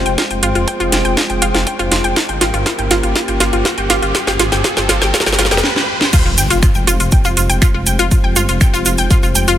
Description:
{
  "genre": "melodic techno",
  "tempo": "121 BPM",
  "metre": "4/4",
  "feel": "straight",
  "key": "F minor",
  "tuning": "A4 = 440 Hz",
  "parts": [
    { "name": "dark analog pad", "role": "sustained chords", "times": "0.0-9.6 s", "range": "Ab3 to C5", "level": "-24 LUFS", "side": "right 1 dB", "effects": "chorus, sidechain pumping" },
    { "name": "dark detuned saw bass", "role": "bass", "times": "0.0-9.6 s", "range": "F1 to Ab1", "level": "-19 LUFS", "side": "equal", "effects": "tube saturation, sidechain pumping" },
    { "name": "riser and impact", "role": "sound effects", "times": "0.7-8.1 s", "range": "none", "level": "-24 LUFS", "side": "equal", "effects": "none" },
    { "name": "granular cloud pad", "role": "texture", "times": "0.0-5.6 s", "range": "F4 to G5", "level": "-24 LUFS", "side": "left 1 dB", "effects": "built-in reverb, sidechain pumping" },
    { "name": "analog pluck", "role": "arpeggios", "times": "0.1-9.5 s", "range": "F4 to G5", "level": "-18 LUFS", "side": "equal", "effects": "chorus, sidechain pumping, digital delay" },
    { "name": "house drum kit", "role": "drums", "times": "0.1-9.6 s", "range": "crash cymbal, finger snaps, hi-hat, snare drum", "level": "-17 LUFS", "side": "equal", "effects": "none" },
    { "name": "electronic kick drum", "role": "drums", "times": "0.2-9.2 s", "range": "none", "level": "-13 LUFS", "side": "equal", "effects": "high-pass filter on kick, high-pass filter on room" },
    { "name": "tube shaker", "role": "percussion", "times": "6.1-9.6 s", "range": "none", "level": "-21 LUFS", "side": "right 3 dB", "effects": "none" }
  ],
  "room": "light reverb",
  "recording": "none",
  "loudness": "-12 LUFS",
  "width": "side -11 dB against mid",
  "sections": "0.0-6.1 A section; 6.1-9.6 B section",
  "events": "build-up 0.0-6.1; drum fill 0.0-5.6, 5.6-6.1; riser 0.7-6.1; stop 5.6-6.1; drop 6.1-9.6; impact 6.1-8.1",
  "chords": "0.0 Fmadd9; 2.2 Gm7b5; 6.1 Fmadd9"
}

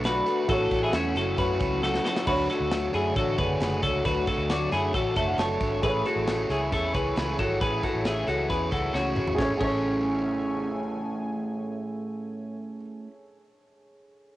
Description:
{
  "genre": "jangly indie pop",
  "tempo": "135 BPM",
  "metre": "4/4",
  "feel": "straight",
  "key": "A major",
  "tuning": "A4 = 440 Hz",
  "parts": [
    { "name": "crunchy overdriven guitar", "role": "accompaniment", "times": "0.0-13.2 s", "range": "D3 to C#5", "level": "-32 LUFS", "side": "right 2 dB", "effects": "cassette tape" },
    { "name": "warm upright piano", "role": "accompaniment", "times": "0.0-14.4 s", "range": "D4 to A5", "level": "-33 LUFS", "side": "right 2 dB", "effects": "cassette tape" },
    { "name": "phased analog pad", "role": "sustained chords", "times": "0.0-12.5 s", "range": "A2 to G#5", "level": "-34 LUFS", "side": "equal", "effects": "phaser, chorus, cassette tape" },
    { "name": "twelve-string electric guitar", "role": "arpeggios", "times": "0.0-10.7 s", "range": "C#4 to C#5", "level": "-27 LUFS", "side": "left 2 dB", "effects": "cassette tape" },
    { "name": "vintage muted fingered electric bass", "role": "bass", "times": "0.0-12.8 s", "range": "F#1 to F#2", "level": "-32 LUFS", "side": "equal", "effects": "none" },
    { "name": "modern studio drum kit", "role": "drums", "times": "0.0-9.7 s", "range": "crash cymbal, hi-hat, kick drum, snare drum, toms", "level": "-32 LUFS", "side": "equal", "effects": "cassette tape" }
  ],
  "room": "light reverb",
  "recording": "home recording on cassette, nothing above 10.9 kHz",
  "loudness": "-24 LUFS",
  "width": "side -15 dB against mid",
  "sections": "0.0-2.3 A section; 2.3-9.4 B section; 9.4-12.9 C section",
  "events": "drum fill 1.8-2.3, 8.9-9.4; upright piano fill 4.9-5.8",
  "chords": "0.5 A6; 2.3 Dmaj7; 5.8 Amaj7"
}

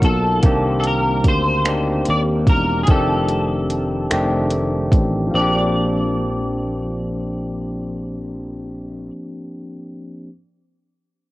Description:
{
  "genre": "slow six-eight R&B",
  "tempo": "49 BPM (dotted quarters)",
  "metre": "6/8",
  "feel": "straight",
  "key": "Bb major",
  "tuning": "A4 = 436 Hz",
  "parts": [
    { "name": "electric guitar at the edge of break-up", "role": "melody", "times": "0.0-9.1 s", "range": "Ab4 to D5", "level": "-23 LUFS", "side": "equal", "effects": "ensemble chorus, cassette tape, analog delay" },
    { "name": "barky tine electric piano", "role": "accompaniment", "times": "0.0-10.3 s", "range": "Eb3 to F5", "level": "-22 LUFS", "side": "left 1 dB", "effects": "medium stereo tremolo, cassette tape" },
    { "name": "sustaining fretless electric bass", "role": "bass", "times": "0.0-9.1 s", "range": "E1 to Eb2", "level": "-22 LUFS", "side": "equal", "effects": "lush chorus" },
    { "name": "smooth R&B drum kit", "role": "drums", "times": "0.0-5.1 s", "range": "finger snaps, hi-hat, kick drum", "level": "-16 LUFS", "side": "equal", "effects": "cassette tape" }
  ],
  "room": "light reverb, digital ambience",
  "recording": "home recording on cassette",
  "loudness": "-16 LUFS",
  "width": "side -17 dB against mid",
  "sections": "0.0-5.3 A section; 5.3-7.8 B section",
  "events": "none",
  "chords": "0.4 Cm9; 2.9 F13; 5.3 Bb69"
}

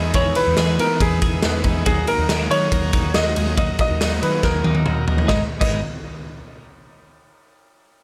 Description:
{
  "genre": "jangly indie pop",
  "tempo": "140 BPM",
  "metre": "4/4",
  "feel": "straight",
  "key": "G# minor",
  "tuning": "A4 = 442 Hz",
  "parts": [
    { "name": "bright upright piano", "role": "melody", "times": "0.0-5.8 s", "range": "G#4 to D#5", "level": "-25 LUFS", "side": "equal", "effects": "delay" },
    { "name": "combo organ", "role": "accompaniment", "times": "0.0-5.8 s", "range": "A#3 to B4", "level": "-33 LUFS", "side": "equal", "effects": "none" },
    { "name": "electric guitar through a small old amp", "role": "accompaniment", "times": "0.0-5.8 s", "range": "G#2 to A#4", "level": "-35 LUFS", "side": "equal", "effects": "none" },
    { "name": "twelve-string electric guitar", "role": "arpeggios", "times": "0.0-5.8 s", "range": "E3 to A#4", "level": "-28 LUFS", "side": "equal", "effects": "phaser" },
    { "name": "vintage muted picked electric bass", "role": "bass", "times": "0.0-5.8 s", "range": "G#1 to E3", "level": "-26 LUFS", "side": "equal", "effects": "none" },
    { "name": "raw garage drum kit", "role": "drums", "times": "0.1-5.7 s", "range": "crash cymbal, kick drum, ride cymbal, snare drum, toms", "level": "-24 LUFS", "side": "equal", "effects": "none" }
  ],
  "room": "studio reverb",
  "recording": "none",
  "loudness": "-19 LUFS",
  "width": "mono",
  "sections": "0.0-5.3 A section; 5.3-7.0 B section",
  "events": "drum fill 4.4-5.3",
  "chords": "0.0 Emaj7; 1.9 D#m; 5.3 G#madd9"
}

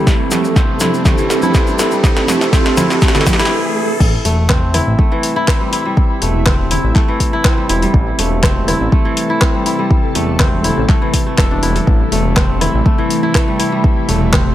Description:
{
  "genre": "afro house",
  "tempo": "122 BPM",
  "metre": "4/4",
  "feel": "straight",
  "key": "A minor",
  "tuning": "A4 = 440 Hz",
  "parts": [
    { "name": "ethereal airy pad", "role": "sustained chords", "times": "0.0-14.5 s", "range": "C3 to A4", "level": "-23 LUFS", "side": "equal", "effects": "ensemble chorus, built-in reverb, sidechain pumping" },
    { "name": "kora", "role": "arpeggios", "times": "0.0-14.5 s", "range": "E3 to A4", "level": "-18 LUFS", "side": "left 1 dB", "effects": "sidechain pumping, low-pass filter, digital delay" },
    { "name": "mellow synth brass", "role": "stabs", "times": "0.0-3.5 s", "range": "C4 to A4", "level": "-18 LUFS", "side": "right 2 dB", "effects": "chorus, sidechain pumping, digital delay" },
    { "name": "riser and swell", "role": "sound effects", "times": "0.0-4.0 s", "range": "none", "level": "-22 LUFS", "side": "equal", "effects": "none" },
    { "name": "deep house drum kit", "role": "drums", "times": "0.1-14.4 s", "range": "crash cymbal, handclaps, hi-hat, rim click, snare drum, toms", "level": "-19 LUFS", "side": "equal", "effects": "overdrive, high-pass filter on hats, high-pass filter on snare, high-pass filter on toms, high-pass filter on cymbals, high-pass filter on room" },
    { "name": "electronic kick drum", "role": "drums", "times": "0.1-14.4 s", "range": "none", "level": "-13 LUFS", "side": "equal", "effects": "overdrive" },
    { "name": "tube shaker", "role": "percussion", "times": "0.1-3.5 s", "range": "none", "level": "-26 LUFS", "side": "left 3 dB", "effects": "none" },
    { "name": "congas", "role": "percussion", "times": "0.3-3.4 s", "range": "none", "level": "-21 LUFS", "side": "right 2 dB", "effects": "none" },
    { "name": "smooth synth bass", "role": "bass", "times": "4.0-14.5 s", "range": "E1 to A1", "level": "-17 LUFS", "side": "equal", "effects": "sidechain pumping" }
  ],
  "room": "light reverb, digital ambience",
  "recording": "none",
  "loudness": "-11 LUFS",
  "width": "side -13 dB against mid",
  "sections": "0.0-4.0 A section; 4.0-14.5 B section",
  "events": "build-up 0.0-4.0; drum fill 0.0-3.5; riser 0.0-4.0; filter sweep on analog polysynth 0.0-4.0; filter sweep on ambient pad 0.0-4.0; swell 3.0-4.0; stop 3.5-4.0; drop 4.0-14.5",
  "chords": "0.0 Am7"
}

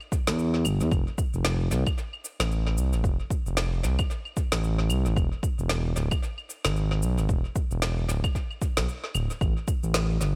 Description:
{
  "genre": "organic downtempo",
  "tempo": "113 BPM",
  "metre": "4/4",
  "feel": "swing 58% on 16ths",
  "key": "unclear",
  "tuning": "A4 = 438 Hz",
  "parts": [
    { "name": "electronic kick drum", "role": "drums", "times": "0.1-9.8 s", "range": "none", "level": "-29 LUFS", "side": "equal", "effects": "overdrive" },
    { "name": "electronic shaker, snare drum and claves", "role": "drums", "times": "0.1-10.3 s", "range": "none", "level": "-34 LUFS", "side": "equal", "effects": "tape echo" },
    { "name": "smooth gliding synth bass", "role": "bass", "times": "0.3-10.3 s", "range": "D1 to E2", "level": "-28 LUFS", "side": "equal", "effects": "tube saturation, sidechain pumping" }
  ],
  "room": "digital ambience",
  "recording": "echo-heavy mix",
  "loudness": "-27 LUFS",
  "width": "mono",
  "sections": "0.0-10.4 A section",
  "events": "none",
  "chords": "none"
}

